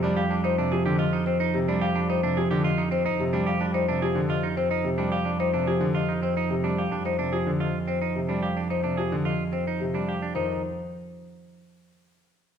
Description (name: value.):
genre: classical, minimalist pattern music.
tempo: 109 BPM.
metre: 3/4.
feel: straight.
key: F dorian.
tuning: A4 = 441 Hz.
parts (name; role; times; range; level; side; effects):
marimba with soft mallets; melody; 0.0-10.6 s; G4 to F5; -29 LUFS; left 7 dB; none.
bright grand piano; accompaniment; 0.0-10.6 s; C3 to G3; -29 LUFS; left 1 dB; none.
clean electric guitar; arpeggios; 0.0-10.6 s; C4 to Ab4; -31 LUFS; right 6 dB; none.
warm double bass; bass; 0.0-10.6 s; F2; -28 LUFS; right 4 dB; none.
room: wet recital hall reverb, RT60 1.7 s.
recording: dark, warm production.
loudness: -23 LUFS.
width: side -8 dB against mid.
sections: 0.0-10.4 A section; 10.4-12.0 B section.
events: none.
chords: 0.0 F7sus2; 10.4 F5.